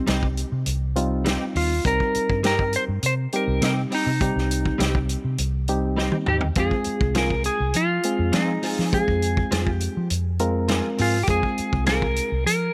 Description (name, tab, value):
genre	straight-eighth soul blues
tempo	102 BPM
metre	4/4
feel	straight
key	C minor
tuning	A4 = 440 Hz
part	clean lap steel guitar	melody	0.0-12.7 s	Eb4 to C5	-27 LUFS	equal	none
part	barky reed electric piano	accompaniment	0.0-12.3 s	G3 to Bb4	-30 LUFS	equal	overdrive, spring reverb
part	direct-recorded clean electric guitar	stabs	0.1-12.1 s	F3 to Ab4	-33 LUFS	equal	ensemble chorus
part	vintage muted fingered electric bass	bass	0.1-12.7 s	C2 to F3	-27 LUFS	equal	none
part	warm soul drum kit	drums	0.1-12.6 s	hi-hat, kick drum, snare drum, toms	-28 LUFS	equal	none
room	light reverb, small room ambience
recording	none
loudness	-23 LUFS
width	mono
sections	0.0-12.7 A section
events	drum fill 6.0-6.6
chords	0.0 Cm; 6.6 Fm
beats	0.07 0.67 1.25 | 1.84 2.44 3.02 3.62 | 4.21 4.80 5.39 5.97 | 6.57 7.16 7.75 8.33 | 8.92 9.51 10.10 10.69 | 11.28 11.87 12.46